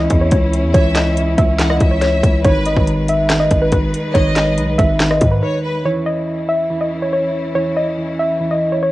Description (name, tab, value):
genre	hip hop, trap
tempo	141 BPM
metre	4/4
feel	half-time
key	unclear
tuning	A4 = 438 Hz
part	soft round pluck	melody	0.0-8.9 s	B4 to E5	-18 LUFS	equal	chorus, low-pass filter, analog delay
part	soft electric-piano-like synth keys	accompaniment	0.0-8.9 s	D#3 to E3	-20 LUFS	equal	chorus, low-pass filter, cassette tape
part	warm studio string section	sustained chords	0.0-8.9 s	D#3 to B4	-26 LUFS	equal	cassette tape
part	hard-hitting 808-style bass	bass	0.0-5.4 s	G#1 to G#2	-18 LUFS	equal	none
part	trap drum kit	drums	0.1-5.3 s	handclaps, hi-hat, kick drum, rim click, snare drum	-17 LUFS	equal	vintage 12-bit sampler grit, cassette tape
part	rich studio violin section	second line	0.7-5.8 s	B4 to F#5	-25 LUFS	right 1 dB	cassette tape, analog delay
room	little or no reverb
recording	home recording on cassette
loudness	-13 LUFS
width	side -17 dB against mid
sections	0.0-5.9 A section; 5.9-8.9 B section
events	break 5.4-5.9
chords	0.0 C#madd9; 2.4 G#m; 5.9 C#madd9